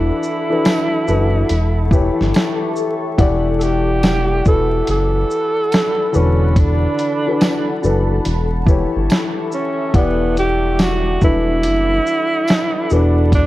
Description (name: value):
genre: lo-fi hip hop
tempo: 71 BPM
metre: 4/4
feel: swing 66% on 16ths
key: E dorian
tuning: A4 = 439 Hz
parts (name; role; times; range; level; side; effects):
- breathy tenor saxophone; melody; 0.0-13.5 s; B3 to A4; -19 LUFS; right 2 dB; low-pass filter
- warm upright piano; accompaniment; 0.0-13.5 s; D3 to F#5; -20 LUFS; left 4 dB; cassette tape, low-pass filter
- granular cloud pad; sustained chords; 0.0-13.5 s; G3 to D6; -26 LUFS; left 1 dB; built-in reverb, low-pass filter
- smooth synth bass; bass; 0.0-13.5 s; E1 to G1; -18 LUFS; equal; none
- dusty soul sampler-style drum kit; drums; 0.2-13.5 s; hi-hat, kick drum, shaker, snare drum; -17 LUFS; equal; vintage 12-bit sampler grit
- tambourine; percussion; 0.7-12.7 s; none; -38 LUFS; right 7 dB; none
room: light reverb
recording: vinyl crackle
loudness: -14 LUFS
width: side -16 dB against mid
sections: 0.0-13.5 A section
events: none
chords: 0.0 E9sus4; 1.5 A7/E; 3.2 Em9; 4.5 E9sus4; 8.3 A7/E; 9.9 Em9; 11.2 E9sus4